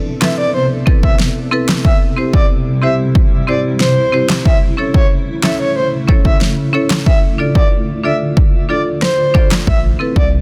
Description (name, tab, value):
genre	dancehall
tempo	92 BPM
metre	4/4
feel	straight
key	A minor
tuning	A4 = 440 Hz
part	granular cloud pad	sustained chords	0.0-10.4 s	C3 to A4	-23 LUFS	equal	built-in reverb, sidechain pumping
part	breathy flute-like synth lead	melody	0.2-10.3 s	C5 to E5	-21 LUFS	equal	chorus, delay
part	marimba with hard mallets	accompaniment	0.2-10.1 s	C4 to D5	-22 LUFS	equal	sidechain pumping
part	deep house drum kit	drums	0.2-10.3 s	handclaps, kick drum, rim click, snare drum	-15 LUFS	equal	overdrive
part	punchy sub bass	bass	9.7-10.4 s	A1 to C2	-17 LUFS	equal	none
room	little or no reverb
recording	dense, heavily limited modern master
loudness	-14 LUFS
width	mono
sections	0.0-10.4 A section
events	none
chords	0.0 Amadd9; 1.8 C; 4.5 A; 7.1 Dm; 9.7 Amadd9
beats	0.54 1.20 | 1.85 2.50 3.15 3.80 | 4.46 5.11 5.76 6.41 | 7.07 7.72 8.37 9.02 | 9.67 10.32